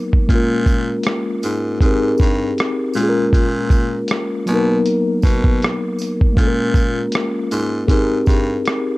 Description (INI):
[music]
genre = lo-fi hip hop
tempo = 79 BPM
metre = 4/4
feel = swing 58% on 16ths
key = Bb dorian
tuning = A4 = 441 Hz
[part]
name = mellow tine electric piano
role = accompaniment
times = 0.0-9.0 s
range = F#3 to A#4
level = -18 LUFS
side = left 1 dB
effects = medium stereo tremolo, cassette tape
[part]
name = lo-fi sampler-style drum kit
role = drums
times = 0.1-8.9 s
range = hi-hat, kick drum, rim click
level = -17 LUFS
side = equal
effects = none
[part]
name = growling baritone saxophone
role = bass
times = 0.3-8.6 s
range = G2 to B2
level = -22 LUFS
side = equal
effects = none
[part]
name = tambourine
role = percussion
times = 0.7-8.5 s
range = none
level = -39 LUFS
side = right 6 dB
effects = none
[sound]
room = light reverb, digital ambience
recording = cassette tape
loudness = -15 LUFS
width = side -20 dB against mid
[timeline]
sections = 0.0-9.0 A section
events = none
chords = 0.3 Bbm7; 1.8 Abmaj9; 2.9 Bbm7; 4.5 Bmaj7; 6.4 Bbm7; 7.9 Abmaj9